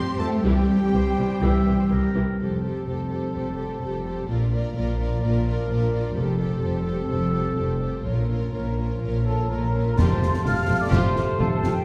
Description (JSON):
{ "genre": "cinematic, heroic adventure film score", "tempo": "127 BPM", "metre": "4/4", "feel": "straight", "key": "F major", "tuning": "A4 = 439 Hz", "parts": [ { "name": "dark studio violin section", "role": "melody", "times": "0.0-11.8 s", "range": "A4 to C6", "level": "-39 LUFS", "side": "equal", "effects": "none" }, { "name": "large flute ensemble", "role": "second line", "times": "0.0-2.1, 9.3-11.8 s", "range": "G4 to F6", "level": "-34 LUFS", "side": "equal", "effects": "none" }, { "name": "mellow clarinet", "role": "second line", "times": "0.0-2.2 s", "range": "none", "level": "barely audible", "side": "none", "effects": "none" }, { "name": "rich symphonic violin section", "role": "second line", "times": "0.0-11.7 s", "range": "C4 to Bb4", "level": "-39 LUFS", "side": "equal", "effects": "none" }, { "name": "rich studio viola section", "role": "accompaniment", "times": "0.0-11.7 s", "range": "C3 to G4", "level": "-36 LUFS", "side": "equal", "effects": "none" }, { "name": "dark French horn section", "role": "sustained chords", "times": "0.0-11.8 s", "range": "F3 to G4", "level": "-36 LUFS", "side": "equal", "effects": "none" }, { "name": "dark trumpet section", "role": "stabs", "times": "0.0-11.8 s", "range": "G4 to F5", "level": "-35 LUFS", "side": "equal", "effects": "none" }, { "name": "rich symphonic cello section", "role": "bass", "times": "0.0-11.7 s", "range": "F2 to C4", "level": "-29 LUFS", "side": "equal", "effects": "none" }, { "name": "warm symphonic double bass section", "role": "bass", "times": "0.0-11.7 s", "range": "F1 to F2", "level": "-28 LUFS", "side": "equal", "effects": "none" }, { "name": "warm oboe", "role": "second line", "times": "0.9-2.4, 10.0-11.8 s", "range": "Bb4 to A5", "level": "-38 LUFS", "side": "equal", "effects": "none" }, { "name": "concert snare drum, clash cymbals and concert bass drum", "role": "drums", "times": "10.0-11.7 s", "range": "none", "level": "-29 LUFS", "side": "equal", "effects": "none" }, { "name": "timpani", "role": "percussion", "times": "10.0-10.7 s", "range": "F2", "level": "-28 LUFS", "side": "equal", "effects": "none" } ], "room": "wet concert hall reverb, RT60 1.9 s", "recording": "heard from further back in the room", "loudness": "-23 LUFS", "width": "mono", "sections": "0.0-2.4 A section; 2.4-10.0 B section; 10.0-11.8 A section", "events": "none", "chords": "0.4 C; 2.4 Fadd9; 4.3 Bb; 6.2 Fadd9; 8.0 Bbm; 10.0 Fadd9" }